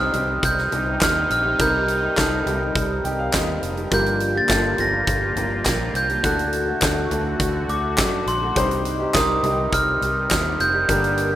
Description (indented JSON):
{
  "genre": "piano-driven pop",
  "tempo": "103 BPM",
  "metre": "4/4",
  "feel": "straight",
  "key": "unclear",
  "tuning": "A4 = 440 Hz",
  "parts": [
    { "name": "glockenspiel with soft plastic mallets", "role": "melody", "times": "0.0-11.4 s", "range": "C6 to Bb6", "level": "-22 LUFS", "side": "right 1 dB", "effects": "none" },
    { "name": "warm upright piano", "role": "accompaniment", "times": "0.0-11.4 s", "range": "G2 to G5", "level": "-27 LUFS", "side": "left 2 dB", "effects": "none" },
    { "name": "sweeping resonant pad", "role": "sustained chords", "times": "0.0-11.4 s", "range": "C3 to Bb4", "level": "-29 LUFS", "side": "left 1 dB", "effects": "chorus" },
    { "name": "fingerpicked steel-string acoustic guitar", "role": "riff", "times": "0.0-11.4 s", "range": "G2 to A4", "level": "-30 LUFS", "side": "right 4 dB", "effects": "none" },
    { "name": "vintage muted fingered electric bass", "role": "bass", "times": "0.0-11.4 s", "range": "F1 to F#2", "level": "-28 LUFS", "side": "equal", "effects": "none" },
    { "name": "huge arena drum kit", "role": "drums", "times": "0.1-11.3 s", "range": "handclaps, hi-hat, kick drum, snare drum, toms", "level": "-24 LUFS", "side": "equal", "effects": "none" }
  ],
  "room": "light reverb",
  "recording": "rough home demo mix",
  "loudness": "-18 LUFS",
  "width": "side -13 dB against mid",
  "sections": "0.0-11.4 A section",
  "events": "upright piano fill 2.8-3.9",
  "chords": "0.0 Cm; 3.9 Gm7; 6.2 D; 8.6 Cm"
}